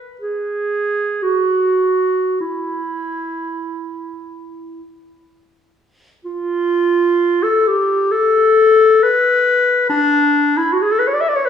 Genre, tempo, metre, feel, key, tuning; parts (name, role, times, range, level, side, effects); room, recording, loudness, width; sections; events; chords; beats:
classical, free, expressive piece for unaccompanied clarinet; 34-76 BPM; 3/4; rubato; A4 = 440 Hz
clear clarinet; solo; 0.2-11.5 s; D4 to E5; -14 LUFS; left 1 dB
moderate concert hall reverb, RT60 1.8 s; studio reverb; -13 LUFS; side -8 dB against mid
0.0-6.2 A section; 6.2-11.5 B section
0.21 1.22 | 2.39 3.64 4.86 | 6.24 7.20 8.10 | 9.02 9.89 10.73